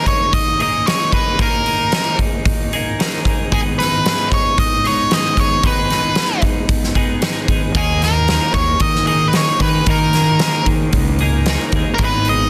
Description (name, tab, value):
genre	quiet-loud alternative rock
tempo	113 BPM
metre	4/4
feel	straight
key	unclear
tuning	A4 = 441 Hz
part	octave-fuzz lead guitar	melody	0.0-12.5 s	G#4 to D#5	-20 LUFS	equal	distortion
part	twelve-string electric guitar	arpeggios	0.0-12.5 s	G#2 to G#4	-24 LUFS	equal	subtle chorus
part	huge arena drum kit	drums	0.1-12.4 s	hi-hat, kick drum, snare drum	-20 LUFS	equal	none
part	fuzz fingered electric bass	bass	7.7-12.5 s	G#1 to D#3	-20 LUFS	equal	overdrive
room	light reverb, small room ambience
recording	dense, heavily limited modern master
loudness	-16 LUFS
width	mono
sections	0.0-12.5 A section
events	none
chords	0.0 D#sus4; 3.5 G#m; 7.8 D#sus4